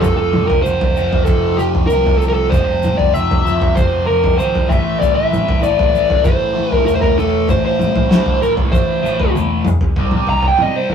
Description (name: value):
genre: psychedelic rock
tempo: 97 BPM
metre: 4/4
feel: straight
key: unclear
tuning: A4 = 439 Hz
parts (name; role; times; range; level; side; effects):
- fuzz lead guitar; melody; 0.0-10.9 s; G4 to Bb5; -16 LUFS; right 1 dB; distortion
- fuzz guitar; riff; 0.0-10.9 s; F2 to C4; -20 LUFS; left 2 dB; distortion, phaser
- picked electric bass; bass; 0.0-10.9 s; E1 to C3; -21 LUFS; left 1 dB; none
- cloth-damped thuddy drum kit; drums; 0.0-10.9 s; kick drum, snare drum, toms; -17 LUFS; equal; none
- egg shaker; percussion; 0.0-9.8 s; none; -45 LUFS; left 4 dB; none
room: moderate studio reverb, RT60 0.5 s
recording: rough rehearsal-room recording, tube saturation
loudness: -13 LUFS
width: side -7 dB against mid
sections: 0.0-10.0 A section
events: drum fill 9.4-10.0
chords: 0.0 F5; 4.7 Am; 10.0 C5